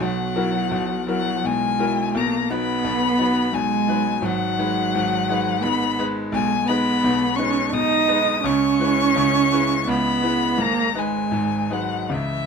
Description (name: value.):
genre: classical, slow romantic movement for piano trio.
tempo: 84 BPM.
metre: 3/4.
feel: rubato.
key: G# minor from 6.3 s.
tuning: A4 = 440 Hz.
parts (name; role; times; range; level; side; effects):
muted violin; melody; 0.0-12.5 s; E5 to D#6; -24 LUFS; left 9 dB; none.
muted cello; second line; 0.0-12.5 s; E3 to D#4; -22 LUFS; right 7 dB; none.
bright grand piano; accompaniment; 0.0-12.5 s; G#1 to B4; -24 LUFS; left 3 dB; none.
room: light reverb.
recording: minimal, uncompressed stereo recording.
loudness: -18 LUFS.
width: side -6 dB against mid.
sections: 0.0-12.5 A section.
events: none.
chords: 0.0 F#7/B; 2.1 B; 4.2 G#m7; 6.3 G#m/B; 8.4 C#m7; 10.6 G#m.